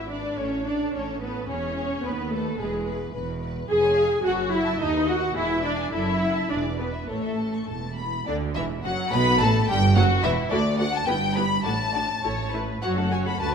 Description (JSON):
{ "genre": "quick classical-period movement for string orchestra", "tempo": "100-110 BPM", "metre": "2/4", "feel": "rubato", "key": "A major, D major from 8.3 s", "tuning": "A4 = 440 Hz", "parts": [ { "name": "warm symphonic violin section", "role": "melody", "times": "0.0-13.5 s", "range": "G#4 to C#6", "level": "-29 LUFS", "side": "left 4 dB", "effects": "none" }, { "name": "rich symphonic violin section", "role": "second line", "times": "0.0-13.5 s", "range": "D4 to G#5", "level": "-31 LUFS", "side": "left 1 dB", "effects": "none" }, { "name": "rich symphonic viola section", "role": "accompaniment", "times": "0.0-13.5 s", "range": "D3 to G#4", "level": "-26 LUFS", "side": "equal", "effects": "none" }, { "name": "rich symphonic cello section", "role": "bass", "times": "0.0-13.5 s", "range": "D2 to B2", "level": "-30 LUFS", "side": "right 2 dB", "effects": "none" }, { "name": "warm studio double bass section", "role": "bass", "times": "0.0-13.5 s", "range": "E1 to D#2", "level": "-30 LUFS", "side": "right 3 dB", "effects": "none" } ], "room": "moderate scoring stage reverb, RT60 1.6 s", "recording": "minimal, uncompressed stereo recording", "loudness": "-22 LUFS", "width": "side -6 dB against mid", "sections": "0.0-8.3 A section; 8.3-13.5 B section", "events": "none", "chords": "0.4 Aadd9; 1.5 E; 2.0 B/D#; 2.6 E5; 3.7 C#7/E#; 4.2 F#m; 4.8 B7/D#; 5.4 E; 5.9 F#m; 6.5 E7; 7.1 A; 8.3 D; 9.4 A5; 10.5 D; 11.1 Em/G; 11.7 D5/A; 12.2 A; 12.8 F#m", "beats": "| 0.38 0.94 | 1.49 2.05 | 2.60 3.15 | 3.70 4.25 | 4.81 5.37 | 5.93 6.50 | 7.10 7.69 | 8.28 8.85 | 9.41 9.96 | 10.52 11.08 | 11.65 12.24 | 12.83 13.40" }